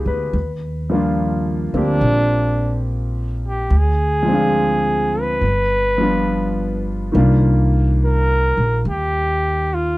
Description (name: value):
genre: jazz ballad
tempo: 71 BPM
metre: 4/4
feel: swing 67% on 8ths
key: Eb major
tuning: A4 = 438 Hz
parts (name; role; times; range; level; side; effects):
- clear concert grand piano; accompaniment; 0.0-10.0 s; Eb3 to Cb5; -21 LUFS; left 1 dB; none
- upright bass; bass; 0.1-10.0 s; G1 to Eb2; -19 LUFS; equal; none
- warm flugelhorn; melody; 1.8-10.0 s; D4 to Cb5; -19 LUFS; equal; none
room: light reverb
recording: dry, close 1970s-style studio recording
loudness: -16 LUFS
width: side -19 dB against mid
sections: 0.0-7.1 A section; 7.1-10.0 B section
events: none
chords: 0.3 Ebmaj9; 3.7 Dm7b5; 5.4 G7; 7.1 Cm11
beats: | 0.34 1.18 2.01 2.85 | 3.70 4.55 5.41 6.28 | 7.15 8.00 8.85 9.69